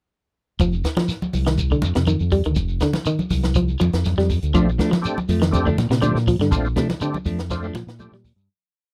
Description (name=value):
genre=afrobeat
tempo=121 BPM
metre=4/4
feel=straight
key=F mixolydian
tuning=A4 = 439 Hz
part: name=electric guitar at the edge of break-up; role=arpeggios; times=0.6-8.3 s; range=C3 to G3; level=-25 LUFS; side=equal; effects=phaser
part: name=fingered electric bass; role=bass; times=0.6-8.5 s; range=F1 to Bb2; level=-24 LUFS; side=equal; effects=none
part: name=compact cocktail drum kit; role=drums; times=0.6-8.5 s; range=hi-hat, kick drum, snare drum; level=-27 LUFS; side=equal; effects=none
part: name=congas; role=percussion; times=0.6-8.1 s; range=none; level=-29 LUFS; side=equal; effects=none
part: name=shekere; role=percussion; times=0.6-8.5 s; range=none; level=-34 LUFS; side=equal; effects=none
part: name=overdriven tonewheel organ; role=accompaniment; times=4.5-8.2 s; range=A3 to G4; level=-27 LUFS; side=equal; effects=slow rotary speaker, chorus vibrato
part: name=clean electric guitar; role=stabs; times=4.5-8.3 s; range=F3 to D4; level=-26 LUFS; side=equal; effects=none
room=little or no reverb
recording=dry, close 1970s-style studio recording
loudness=-21 LUFS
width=mono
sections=0.6-8.5 groove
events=fade-out 6.5-8.5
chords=0.6 F5; 4.5 Bbmaj7